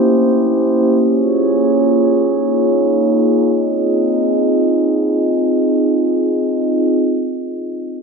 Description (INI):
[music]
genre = dream pop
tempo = free time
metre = none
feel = none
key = Ab major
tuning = A4 = 440 Hz
[part]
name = glass harmonica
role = sustained chords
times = 0.0-7.0 s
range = Bb3 to Eb5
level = -13 LUFS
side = right 1 dB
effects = low-pass filter
[sound]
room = wet plate reverb, RT60 2.5 s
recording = none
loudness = -13 LUFS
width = side -5 dB against mid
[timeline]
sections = 0.0-3.5 A section; 3.5-6.2 B section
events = slowing down 0.0-3.5; filter sweep on glass harmonica 0.0-3.5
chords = 0.0 C7b9; 1.0 Bbm7; 2.2 Eb9sus4; 3.5 Ab6